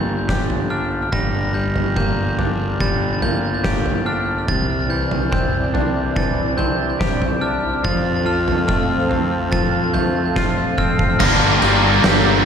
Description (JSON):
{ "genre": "post-rock", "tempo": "72 BPM", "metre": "4/4", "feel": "straight", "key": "G dorian", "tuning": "A4 = 440 Hz", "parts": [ { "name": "glockenspiel with hard plastic mallets", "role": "arpeggios", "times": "0.0-12.4 s", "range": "F6 to Bb6", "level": "-24 LUFS", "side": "right 2 dB", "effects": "ping-pong delay" }, { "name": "twangy electric guitar", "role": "arpeggios", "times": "0.0-11.2 s", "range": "C3 to G4", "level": "-25 LUFS", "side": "left 2 dB", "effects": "lush chorus, ping-pong delay" }, { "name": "fuzz fingered electric bass", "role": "bass", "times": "0.0-12.4 s", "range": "G1 to F2", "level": "-23 LUFS", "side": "equal", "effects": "overdrive" }, { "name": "oversized low-tuned drum kit", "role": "drums", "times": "0.3-12.2 s", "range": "crash cymbal, kick drum, ride cymbal, snare drum, toms", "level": "-21 LUFS", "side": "equal", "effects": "none" }, { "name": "lush unison pad", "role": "sustained chords", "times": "4.5-12.4 s", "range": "C4 to Bb5", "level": "-26 LUFS", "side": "equal", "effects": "chorus" }, { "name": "cranked stack guitar", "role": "riff", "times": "11.2-12.4 s", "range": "G2 to D4", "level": "-18 LUFS", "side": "left 10 dB", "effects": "overdrive, wide subtle chorus" }, { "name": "tight distorted guitar", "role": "riff", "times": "11.2-12.4 s", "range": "G2 to G4", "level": "-18 LUFS", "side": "right 9 dB", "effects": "distortion" } ], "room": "moderate lush hall reverb, RT60 3.1 s", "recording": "dreamy mix soaked in reverb", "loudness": "-16 LUFS", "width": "side -7 dB against mid", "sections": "0.0-11.2 A section; 11.2-12.4 B section", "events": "drum fill 10.4-11.2", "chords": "0.0 Gm; 4.5 Cadd9; 7.8 F; 11.2 Gm", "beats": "0.29 | 1.13 1.97 2.81 3.65 | 4.49 5.33 6.17 7.01 | 7.85 8.69 9.53 10.36 | 11.20 12.04" }